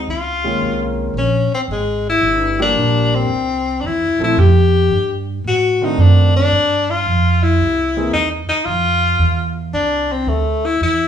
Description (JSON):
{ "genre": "jazz, small-group swing and bop", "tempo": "112 BPM", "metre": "4/4", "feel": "swing 69% on 8ths", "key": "F major", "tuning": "A4 = 440 Hz", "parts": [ { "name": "warm grand piano", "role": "accompaniment", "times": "0.0-8.1 s", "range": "Eb3 to A4", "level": "-22 LUFS", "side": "equal", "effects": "none" }, { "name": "upright bass", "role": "bass", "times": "0.0-11.1 s", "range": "G1 to A2", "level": "-17 LUFS", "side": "right 2 dB", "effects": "none" }, { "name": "clear tenor saxophone", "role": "melody", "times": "0.1-11.1 s", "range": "Ab3 to G4", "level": "-16 LUFS", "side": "left 3 dB", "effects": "none" } ], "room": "moderate large studio reverb, RT60 1.0 s", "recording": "band playing live in one room, studio ambience", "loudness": "-14 LUFS", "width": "side -9 dB against mid", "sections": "0.0-8.7 A section; 8.7-11.1 A section", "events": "none", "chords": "0.1 Db69; 2.2 Gm7; 3.3 C7; 4.4 Fsus2; 5.4 D7b9; 6.5 Dmadd11; 7.6 C7alt; 8.7 F5" }